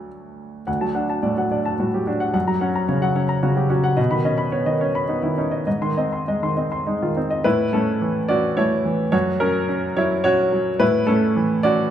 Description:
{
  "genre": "neoclassical minimalist piano",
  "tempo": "99-112 BPM",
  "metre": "3/4",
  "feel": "rubato",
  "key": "D major",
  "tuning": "A4 = 440 Hz",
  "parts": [
    { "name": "clear baby grand piano", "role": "solo", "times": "0.0-11.9 s", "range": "D2 to B#5", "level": "-18 LUFS", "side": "equal", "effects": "none" }
  ],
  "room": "wet recital hall reverb, RT60 1.6 s",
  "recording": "recorded in a church or concert hall",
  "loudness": "-18 LUFS",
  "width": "side -10 dB against mid",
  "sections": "0.7-7.4 A section; 7.4-11.9 B section",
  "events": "none",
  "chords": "0.0 D; 2.3 F#; 4.0 Badd9; 5.7 G#; 7.4 A; 9.1 F#; 10.8 A",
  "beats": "0.08 | 0.67 1.24 1.80 | 2.35 2.89 3.44 | 3.98 4.52 5.08 | 5.66 6.26 6.86 | 7.45 8.02 8.57 | 9.13 9.69 10.26 | 10.81 11.36"
}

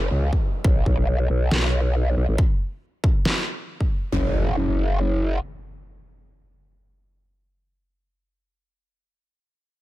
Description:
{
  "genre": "heavy wobble dubstep",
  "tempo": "138 BPM",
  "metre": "4/4",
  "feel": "swing 53% on 16ths, half-time",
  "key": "F# minor",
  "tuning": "A4 = 439 Hz",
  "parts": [
    { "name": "growl bass", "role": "bass", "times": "0.0-5.4 s", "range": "F#1 to C#2", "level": "-20 LUFS", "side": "equal", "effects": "chorus, overdrive" },
    { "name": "downlifter and impact", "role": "sound effects", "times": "0.0-0.6, 4.1-8.4 s", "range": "none", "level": "-31 LUFS", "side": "equal", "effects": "none" },
    { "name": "electronic kick drum", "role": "drums", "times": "0.3-3.9 s", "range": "none", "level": "-20 LUFS", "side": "equal", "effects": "none" },
    { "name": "electronic snare drum", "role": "drums", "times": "1.5-3.3 s", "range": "none", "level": "-24 LUFS", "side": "equal", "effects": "none" }
  ],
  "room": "little or no reverb",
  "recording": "none",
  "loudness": "-20 LUFS",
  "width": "side -16 dB against mid",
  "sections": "0.0-4.1 A section; 4.1-7.6 B section",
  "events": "none",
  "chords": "none",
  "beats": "0.21 | 0.65 1.08 1.51 1.95 | 2.38 2.82 3.25 3.69 | 4.12 4.56 4.99 5.43 | 5.86 6.30 6.73 7.17"
}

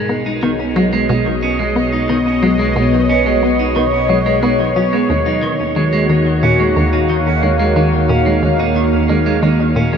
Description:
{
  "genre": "ambient, sequencer-driven space music",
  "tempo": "90 BPM",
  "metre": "4/4",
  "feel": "straight",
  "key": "unclear",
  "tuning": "A4 = 441 Hz",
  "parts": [
    { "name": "phased analog pad", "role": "sustained chords", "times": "0.0-10.0 s", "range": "B2 to F#5", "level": "-16 LUFS", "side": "equal", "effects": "phaser, chorus" },
    { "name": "clean electric guitar", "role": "arpeggios", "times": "0.0-10.0 s", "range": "D#3 to D#4", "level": "-19 LUFS", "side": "right 3 dB", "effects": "auto-pan, tape echo" },
    { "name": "fat analog bass", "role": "bass", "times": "0.0-10.0 s", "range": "B1", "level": "-23 LUFS", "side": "equal", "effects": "none" },
    { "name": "resonant blip pluck", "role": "riff", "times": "0.1-9.9 s", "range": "D#2 to B3", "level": "-18 LUFS", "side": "left 1 dB", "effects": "chorus, tape echo" }
  ],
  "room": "wet huge ambient reverb, RT60 9.3 s",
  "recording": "dreamy mix soaked in reverb",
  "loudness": "-12 LUFS",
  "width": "side -7 dB against mid",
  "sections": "0.0-10.0 A section",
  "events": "none",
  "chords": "0.0 Bmaj7; 5.1 D#m7",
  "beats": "0.43 1.09 1.76 | 2.43 3.10 3.76 4.43 | 5.09 5.76 6.43 7.09 | 7.76 8.43 9.10 9.76"
}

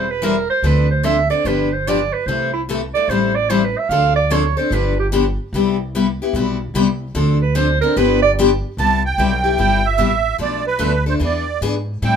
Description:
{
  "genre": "acoustic string swing (jazz manouche)",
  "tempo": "147 BPM",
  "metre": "4/4",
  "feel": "swing 64% on 8ths",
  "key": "C major",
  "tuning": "A4 = 441 Hz",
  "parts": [
    { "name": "bright clarinet", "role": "second line", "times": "0.0-8.3 s", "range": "E4 to F5", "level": "-18 LUFS", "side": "right 5 dB", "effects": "none" },
    { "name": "picked steel-string acoustic guitar", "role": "accompaniment", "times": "0.0-12.2 s", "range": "B2 to A4", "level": "-19 LUFS", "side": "left 5 dB", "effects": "none" },
    { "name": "upright bass", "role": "bass", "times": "0.0-12.2 s", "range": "E1 to A2", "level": "-21 LUFS", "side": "equal", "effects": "none" },
    { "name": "musette accordion", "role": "melody", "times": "8.8-12.2 s", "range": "B4 to A5", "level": "-18 LUFS", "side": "right 6 dB", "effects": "none" }
  ],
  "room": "moderate studio reverb, RT60 0.8 s",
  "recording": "minimal, uncompressed stereo recording",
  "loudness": "-15 LUFS",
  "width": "side -7 dB against mid",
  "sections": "0.0-8.8 A section; 8.8-12.2 B section",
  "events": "clarinet solo 0.0-8.8",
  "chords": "0.0 Am7; 0.6 Dm7; 1.5 G7; 2.3 C6; 3.1 Am7; 3.9 Dm7; 4.7 G7; 5.5 Cmaj7; 7.2 Dm7; 8.0 G7; 8.8 Cmaj7; 10.4 Bm7b5; 11.2 E7",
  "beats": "0.23 | 0.64 1.05 1.46 1.86 | 2.27 2.68 3.08 3.49 | 3.90 4.31 4.71 5.12 | 5.53 5.93 6.34 6.74 | 7.15 7.56 7.96 8.37 | 8.78 9.18 9.59 10.00 | 10.40 10.81 11.22 11.62 | 12.03"
}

